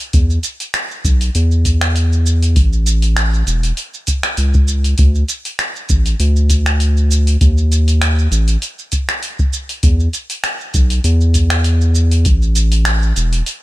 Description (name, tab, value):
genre	sunset chillout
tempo	99 BPM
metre	4/4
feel	swing 54% on 16ths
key	unclear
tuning	A4 = 439 Hz
part	deep house drum kit	drums	0.0-13.6 s	finger snaps, hi-hat, shaker	-20 LUFS	right 1 dB	none
part	round analog bass	bass	0.1-13.4 s	E1 to E2	-12 LUFS	equal	none
part	electronic kick drum	drums	0.1-12.4 s	none	-14 LUFS	equal	none
room	little or no reverb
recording	none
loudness	-12 LUFS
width	side -17 dB against mid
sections	0.0-13.6 A section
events	none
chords	none